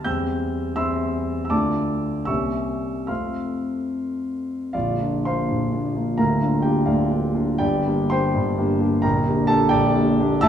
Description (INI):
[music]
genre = classical, romantic character piece for solo piano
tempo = 70-91 BPM (dotted quarters)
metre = 6/8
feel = rubato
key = F major, Bb major from 4.7 s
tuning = A4 = 440 Hz
[part]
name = warm concert grand piano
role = solo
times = 0.0-10.5 s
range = Bb0 to G6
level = -20 LUFS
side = equal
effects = none
[sound]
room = wet recital hall reverb, RT60 1.6 s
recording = heard from further back in the room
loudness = -20 LUFS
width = side -9 dB against mid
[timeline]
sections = 0.0-4.7 A section; 4.7-10.5 B section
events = none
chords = 0.1 C/E; 1.5 Dm; 2.3 C7b9; 3.1 F; 4.7 Bb; 6.2 Bb/D; 7.6 Gm; 9.0 Gm/Bb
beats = | 0.06 0.78 | 1.52 2.28 | 3.09 3.92 | 4.74 5.51 | 6.19 6.88 | 7.61 8.36 | 9.04 9.71 | 10.43